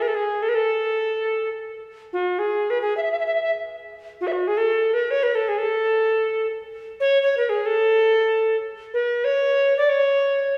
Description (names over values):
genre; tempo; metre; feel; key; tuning
Persian modal ensemble; free time; none; none; A dastgah chahargah; A4 = 442 Hz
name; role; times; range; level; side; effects
bright reedy alto recorder; solo; 0.0-10.6 s; F4+43c to E5; -22 LUFS; equal; none
room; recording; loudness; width
wet lush hall reverb, RT60 2.9 s; rough home demo mix, studio reverb; -22 LUFS; mono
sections
0.0-10.6 A section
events
none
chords
none